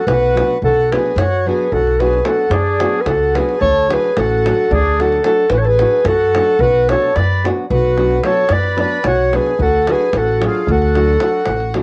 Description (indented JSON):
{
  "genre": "balkan folk, Balkan wedding band",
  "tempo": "221 BPM (eighths)",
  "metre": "11/8",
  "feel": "straight",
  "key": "B minor",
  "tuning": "A4 = 440 Hz",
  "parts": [
    { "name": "dark clarinet", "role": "melody", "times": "0.0-11.7 s", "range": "G#4 to D5", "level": "-17 LUFS", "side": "equal", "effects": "cassette tape, plate reverb" },
    { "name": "accordion", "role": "second line", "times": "0.0-11.7 s", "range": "D4 to B4", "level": "-25 LUFS", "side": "equal", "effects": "cassette tape, plate reverb" },
    { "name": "upright bass", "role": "bass", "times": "0.1-11.8 s", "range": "A1 to F#2", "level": "-21 LUFS", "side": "equal", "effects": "none" },
    { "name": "davul", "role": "percussion", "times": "0.1-11.8 s", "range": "none", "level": "-26 LUFS", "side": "equal", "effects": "none" },
    { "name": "nylon-string guitar", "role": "accompaniment", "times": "0.3-11.8 s", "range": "F#3 to F#4", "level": "-25 LUFS", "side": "equal", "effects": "cassette tape, plate reverb" }
  ],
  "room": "moderate booth ambience, RT60 0.2 s",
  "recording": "home recording on cassette",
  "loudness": "-15 LUFS",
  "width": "mono",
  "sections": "0.6-11.8 A section",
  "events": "none",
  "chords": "0.0 Bm; 3.6 D; 6.6 Bm; 9.6 D",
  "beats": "0.08 0.35 | 0.62 0.90 1.17 1.44 1.71 1.99 2.26 2.53 2.80 3.07 3.35 | 3.62 3.89 4.16 4.43 4.71 4.98 5.25 5.52 5.79 6.07 6.34 | 6.61 6.88 7.15 7.42 7.70 7.97 8.24 8.51 8.78 9.05 9.32 | 9.60 9.87 10.14 10.41 10.68 10.95 11.22 11.49 11.76"
}